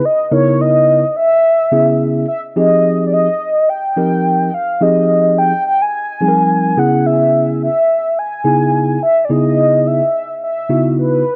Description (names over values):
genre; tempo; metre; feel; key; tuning
funk; 107 BPM; 4/4; swing 56% on 16ths; unclear; A4 = 440 Hz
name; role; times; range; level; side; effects
mellow horn-like synth lead; melody; 0.0-11.4 s; Cb5 to Ab5; -16 LUFS; equal; chorus
mellow tine electric piano; accompaniment; 0.3-11.2 s; Db3 to Bb4; -17 LUFS; equal; none
room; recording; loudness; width
little or no reverb; dry, close 1970s-style studio recording; -14 LUFS; mono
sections
0.0-11.4 A section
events
none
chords
0.0 Dbm9; 2.6 Fm9; 6.8 Dbm9